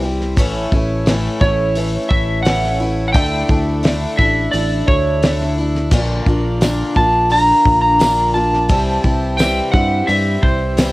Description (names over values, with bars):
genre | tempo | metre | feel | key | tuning
folk rock and heartland rock | 86 BPM | 4/4 | straight | unclear | A4 = 440 Hz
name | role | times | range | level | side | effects
picked steel-string acoustic guitar | accompaniment | 0.0-10.9 s | A2 to F4 | -21 LUFS | left 2 dB | cassette tape
pedal harmonium | sustained chords | 0.0-10.9 s | C4 to E5 | -27 LUFS | right 2 dB | cassette tape
fingered electric bass | bass | 0.0-10.9 s | A1 to G2 | -20 LUFS | equal | none
damped 70s drum kit | drums | 0.2-10.9 s | crash cymbal, hi-hat, kick drum, snare drum | -18 LUFS | equal | cassette tape
electric slide guitar | melody | 1.4-10.9 s | C5 to Bb5 | -17 LUFS | equal | cassette tape
tambourine | percussion | 6.6-10.9 s | none | -30 LUFS | right 5 dB | none
room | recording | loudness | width
light reverb | home recording on cassette | -13 LUFS | side -20 dB against mid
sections
0.0-10.9 A section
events
none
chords
0.4 A; 3.1 Dsus2; 5.9 Bb; 8.7 C